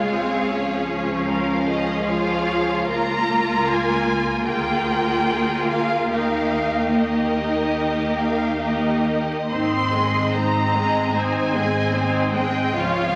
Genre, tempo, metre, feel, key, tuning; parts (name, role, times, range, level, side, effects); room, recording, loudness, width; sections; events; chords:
classical, slow romantic movement for string orchestra; 64-78 BPM; 4/4; rubato; Ab major; A4 = 438 Hz
warm symphonic violin section; melody; 0.0-13.2 s; Db5 to C6; -27 LUFS; equal
rich symphonic violin section; second line; 0.0-13.1 s; F4 to F5; -29 LUFS; equal
rich symphonic viola section; accompaniment; 0.0-13.1 s; F3 to F4; -25 LUFS; equal
rich studio double bass section; bass; 0.0-13.2 s; Ab1 to Eb2; -34 LUFS; equal
warm symphonic cello section; bass; 0.0-13.2 s; Db2 to Ab2; -32 LUFS; equal
wet concert hall reverb, RT60 2.4 s; vinyl crackle; -21 LUFS; mono
0.0-13.2 A section
0.0 Db; 2.9 Bbm/Db; 4.5 Bb7/D; 6.1 Eb; 9.5 Ab